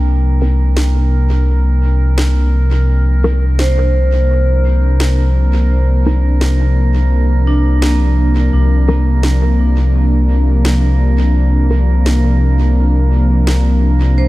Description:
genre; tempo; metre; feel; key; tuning
ambient dub; 85 BPM; 4/4; straight; unclear; A4 = 440 Hz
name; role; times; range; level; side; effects
warm analog pad; sustained chords; 0.0-14.3 s; C3 to D4; -19 LUFS; equal; chorus
vibraphone with medium hard mallets; arpeggios; 0.0-14.3 s; Bb3 to C5; -23 LUFS; right 2 dB; low-pass filter, tape echo
soft dub sub bass; bass; 0.0-14.3 s; C2; -12 LUFS; equal; none
drifting glass-harmonics texture; texture; 0.0-14.3 s; Bb4; -27 LUFS; right 6 dB; chorus, built-in reverb
filtered dub chord stab; stabs; 0.4-11.9 s; C4 to Bb4; -23 LUFS; left 1 dB; phaser, dub echo
electronic snare drum; drums; 0.8-13.6 s; none; -24 LUFS; equal; dub echo
room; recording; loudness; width
little or no reverb; none; -10 LUFS; side -18 dB against mid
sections
0.0-14.3 A section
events
filter sweep on vibraphone 0.0-14.3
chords
0.0 C7(no3); 8.5 Bbadd9/C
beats
| 0.06 0.77 1.47 2.18 | 2.88 3.59 4.30 5.00 | 5.71 6.41 7.12 7.83 | 8.53 9.24 9.94 10.65 | 11.36 12.06 12.77 13.47 | 14.18

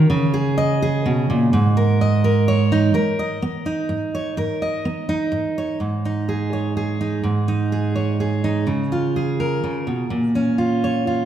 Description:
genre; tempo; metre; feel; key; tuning
folk; 126 BPM; 3/4; straight; G# dorian; A4 = 440 Hz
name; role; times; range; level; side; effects
fingerpicked steel-string acoustic guitar; solo; 0.0-11.3 s; G#2 to D#5; -18 LUFS; right 2 dB; none
room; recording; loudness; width
wet recital hall reverb, RT60 1.5 s; recorded in a church or concert hall; -18 LUFS; side -10 dB against mid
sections
0.0-2.9 A section; 2.9-5.8 B section; 5.8-11.3 C section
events
none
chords
0.1 C#sus2; 1.5 G#sus2; 2.9 G#madd9; 5.8 G#5; 8.7 C#; 10.1 A#m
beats
| 0.09 0.57 1.04 | 1.51 1.99 2.46 | 2.94 3.41 3.89 | 4.37 4.84 5.32 | 5.80 6.28 6.76 | 7.24 7.71 8.19 | 8.67 9.15 9.63 | 10.11 10.59 11.06

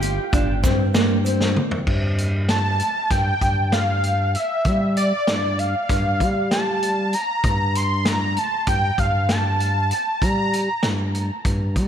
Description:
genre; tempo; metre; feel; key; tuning
progressive instrumental, band music in an uneven meter; 194 BPM (eighths); 9/8; straight; G dorian; A4 = 440 Hz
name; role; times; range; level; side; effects
mellow electric guitar; arpeggios; 0.0-1.7 s; Bb3 to G4; -24 LUFS; right 1 dB; slapback echo, tape echo
smooth gliding synth bass; bass; 0.0-11.9 s; G1 to G3; -22 LUFS; equal; none
vintage drum kit; drums; 0.0-11.9 s; crash cymbal, hi-hat, kick drum, snare drum, toms; -24 LUFS; equal; none
tube shaker; percussion; 0.0-1.4 s; none; -38 LUFS; right 18 dB; none
wide unison lead; melody; 2.5-10.9 s; D5 to C6; -23 LUFS; equal; slapback echo, tape echo
room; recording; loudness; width
light reverb, small room ambience; none; -18 LUFS; side -9 dB against mid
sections
0.0-1.9 A section; 1.9-11.9 B section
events
drum fill 1.4-1.9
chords
0.0 N.C.; 1.9 Gm7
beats
0.03 0.34 0.65 0.96 1.26 1.57 | 1.88 2.19 2.50 2.81 3.12 3.42 3.73 4.04 4.35 | 4.66 4.97 5.28 5.58 5.89 6.20 6.51 6.82 7.13 | 7.44 7.75 8.05 8.36 8.67 8.98 9.29 9.60 9.91 | 10.22 10.53 10.83 11.14 11.45 11.76

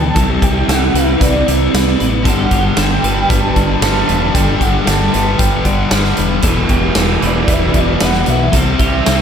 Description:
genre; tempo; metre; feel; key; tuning
rock, shoegaze and dream pop; 115 BPM; 4/4; straight; E minor; A4 = 443 Hz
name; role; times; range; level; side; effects
warm velvety synth lead; melody; 0.0-9.2 s; D5 to A5; -21 LUFS; right 1 dB; chorus, ping-pong delay
twelve-string electric guitar; arpeggios; 0.0-9.2 s; G4 to D5; -24 LUFS; left 2 dB; analog chorus, ping-pong delay
crunchy overdriven guitar; riff; 0.0-9.2 s; E2 to G4; -20 LUFS; right 5 dB; reverse reverb
thick fuzz guitar; riff; 0.0-9.2 s; E2 to C4; -18 LUFS; left 6 dB; distortion, analog chorus
growling fingered electric bass; bass; 0.0-9.2 s; E1 to C2; -18 LUFS; equal; overdrive
huge arena drum kit; drums; 0.2-9.2 s; hi-hat, kick drum, snare drum; -17 LUFS; right 1 dB; none
overdriven electric guitar; riff; 2.2-9.2 s; E2 to C4; -21 LUFS; right 1 dB; none
room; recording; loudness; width
wet lush hall reverb, RT60 1.8 s, studio reverb; dreamy mix soaked in reverb; -11 LUFS; side -8 dB against mid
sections
0.0-9.2 A section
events
none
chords
0.2 Cmaj9; 2.3 Em7; 8.5 Cadd9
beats
| 0.16 0.68 1.21 1.73 | 2.25 2.77 3.30 3.82 | 4.35 4.87 5.39 5.92 | 6.44 6.96 7.49 8.01 | 8.54 9.06

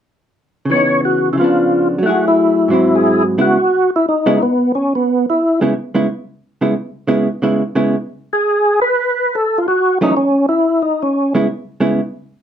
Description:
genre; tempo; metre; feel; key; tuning
jazz; 178 BPM; 4/4; swing 62% on 8ths; C# minor; A4 = 440 Hz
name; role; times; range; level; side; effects
percussive tonewheel organ; melody; 0.7-5.6, 8.3-11.3 s; B3 to C#5; -14 LUFS; equal; slow rotary speaker, overdrive, chorus vibrato
vintage hollow-body jazz guitar; accompaniment; 0.7-8.0, 10.0-12.0 s; F#2 to G#4; -15 LUFS; right 1 dB; none
room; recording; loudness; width
wet club reverb, RT60 0.5 s; none; -13 LUFS; side -9 dB against mid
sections
0.7-3.4 A section; 3.4-12.4 B section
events
none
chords
0.7 C#m9; 1.3 C#7b9; 2.0 F#m9; 2.7 G#aug7; 3.4 C#m7; 8.8 F#m7; 11.5 C#m7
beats
| 0.67 1.01 1.35 1.69 | 2.02 2.36 2.70 3.04 | 3.37 3.71 4.05 4.39 | 4.72 5.06 5.40 5.74 | 6.07 6.41 6.75 7.09 | 7.42 7.76 8.10 8.44 | 8.78 9.11 9.45 9.79 | 10.12 10.46 10.80 11.14 | 11.47 11.81

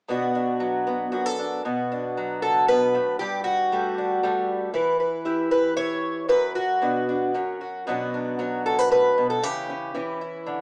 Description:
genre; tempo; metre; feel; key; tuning
folk, solo fingerstyle acoustic guitar; 116 BPM; 3/4; rubato; B minor; A4 = 440 Hz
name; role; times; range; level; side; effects
fingerpicked twelve-string acoustic guitar; solo; 0.1-10.6 s; F#2 to C#5; -24 LUFS; equal; none
room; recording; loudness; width
moderate large studio reverb, RT60 1.2 s; band playing live in one room, small speaker sound; -24 LUFS; mono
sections
0.1-1.6 A section; 1.6-10.6 B section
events
none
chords
0.1 Bm; 3.2 Gsus2; 4.7 Em; 6.3 Bm/F#; 7.3 F#5; 7.9 Bmadd9; 9.4 C#dim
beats
| 0.09 0.60 1.12 | 1.64 2.17 2.69 | 3.21 3.71 4.22 | 4.74 5.25 5.76 | 6.28 6.81 7.34 | 7.86 8.39 8.91 | 9.43 9.94 10.46

